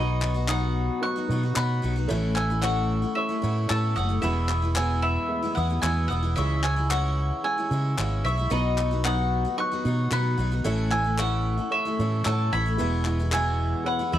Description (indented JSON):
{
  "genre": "indie folk with a building arrangement",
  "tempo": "112 BPM",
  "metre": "4/4",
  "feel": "straight",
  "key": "E major",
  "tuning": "A4 = 439 Hz",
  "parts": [
    { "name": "bowl-back mandolin", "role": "melody", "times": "0.0-14.2 s", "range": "D#5 to C#6", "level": "-29 LUFS", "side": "left 2 dB", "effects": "none" },
    { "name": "glockenspiel with soft plastic mallets", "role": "second line", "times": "0.0-14.2 s", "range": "B5 to G#6", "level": "-32 LUFS", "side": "right 4 dB", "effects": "none" },
    { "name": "dark upright piano", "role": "accompaniment", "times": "0.0-14.2 s", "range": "A1 to F#5", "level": "-34 LUFS", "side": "right 5 dB", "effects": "none" },
    { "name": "picked twelve-string acoustic guitar", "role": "accompaniment", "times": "0.0-14.2 s", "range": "E2 to F#4", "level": "-31 LUFS", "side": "left 3 dB", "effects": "none" },
    { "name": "fingered electric bass", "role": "bass", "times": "0.0-14.2 s", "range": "E1 to C#3", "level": "-25 LUFS", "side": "equal", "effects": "none" },
    { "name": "group handclap", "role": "percussion", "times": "0.2-13.4 s", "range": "none", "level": "-31 LUFS", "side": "left 4 dB", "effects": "none" }
  ],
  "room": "small room ambience",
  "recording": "dry, close 1970s-style studio recording",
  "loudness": "-23 LUFS",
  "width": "side -12 dB against mid",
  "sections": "0.0-14.2 A section",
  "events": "none",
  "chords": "0.0 B; 2.1 A; 4.2 E; 6.4 C#m; 8.5 B; 10.7 A; 12.8 E"
}